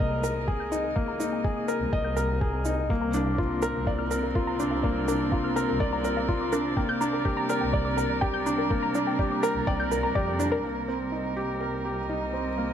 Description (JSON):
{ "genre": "piano and strings electronica", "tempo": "124 BPM", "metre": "4/4", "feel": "straight", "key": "C minor", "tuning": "A4 = 438 Hz", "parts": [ { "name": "warm string quartet", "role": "sustained chords", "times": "0.0-12.7 s", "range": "C3 to Eb5", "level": "-33 LUFS", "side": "right 4 dB", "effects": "none" }, { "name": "warbly dusty pluck", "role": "arpeggios", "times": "0.0-10.6 s", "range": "Bb4 to G6", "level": "-33 LUFS", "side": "left 2 dB", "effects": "chorus, sidechain pumping, tape echo" }, { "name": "felt-muted upright piano", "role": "riff", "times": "0.0-12.7 s", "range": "Bb3 to Eb5", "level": "-28 LUFS", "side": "left 1 dB", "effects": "tape echo" }, { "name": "muted symphonic double bass section", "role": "bass", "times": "0.0-12.7 s", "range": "C2 to F2", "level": "-33 LUFS", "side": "equal", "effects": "sidechain pumping" }, { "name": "electronic kick drum", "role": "drums", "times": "0.0-10.3 s", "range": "none", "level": "-28 LUFS", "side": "equal", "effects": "none" }, { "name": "shaker", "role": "drums", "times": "0.2-10.5 s", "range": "none", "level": "-41 LUFS", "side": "right 12 dB", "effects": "none" } ], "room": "light reverb, small room ambience", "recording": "none", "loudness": "-24 LUFS", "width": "side -9 dB against mid", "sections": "0.0-10.6 A section; 10.6-12.7 B section", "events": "fade-in on string quartet 0.0-10.6; filter sweep on synth arpeggio sound 0.0-10.6", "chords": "0.0 Absus2/C; 2.9 Bb/C; 6.8 Gm/C; 10.6 Cm7" }